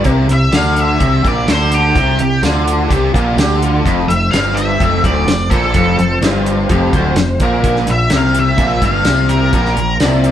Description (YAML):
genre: classic rock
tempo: 127 BPM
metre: 4/4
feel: straight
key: unclear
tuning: A4 = 443 Hz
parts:
  - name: overdriven slide guitar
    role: second line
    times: 0.0-10.3 s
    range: F4 to D5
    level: -22 LUFS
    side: left 2 dB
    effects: none
  - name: biting overdriven guitar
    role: riff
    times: 0.0-10.3 s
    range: D2 to D3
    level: -19 LUFS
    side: right 5 dB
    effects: none
  - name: distorted electric guitar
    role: riff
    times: 0.0-10.3 s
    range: D2 to D3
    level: -18 LUFS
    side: left 5 dB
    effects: overdrive
  - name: growling picked electric bass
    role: bass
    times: 0.0-10.3 s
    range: D1 to D2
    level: -17 LUFS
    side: right 1 dB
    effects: overdrive
  - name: cloth-damped thuddy drum kit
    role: drums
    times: 0.0-10.3 s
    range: hi-hat, kick drum, snare drum, tambourine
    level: -18 LUFS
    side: equal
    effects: none
  - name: octave-fuzz lead guitar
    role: melody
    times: 0.3-10.0 s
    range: G4 to F5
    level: -17 LUFS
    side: left 1 dB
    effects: wah, distortion
  - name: tonewheel organ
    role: sustained chords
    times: 3.9-10.3 s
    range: Bb3 to C5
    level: -27 LUFS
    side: right 1 dB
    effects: none
room: moderate stone room reverb, RT60 1.1 s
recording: band playing live in one room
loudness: -11 LUFS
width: side -10 dB against mid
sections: 0.0-10.3 A section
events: none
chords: 0.1 C5; 3.9 F5; 7.6 Bb5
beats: | 0.05 0.53 1.00 1.48 | 1.95 2.43 2.90 3.38 | 3.85 4.33 4.80 5.27 | 5.75 6.22 6.70 7.17 | 7.64 8.11 8.59 9.06 | 9.53 10.00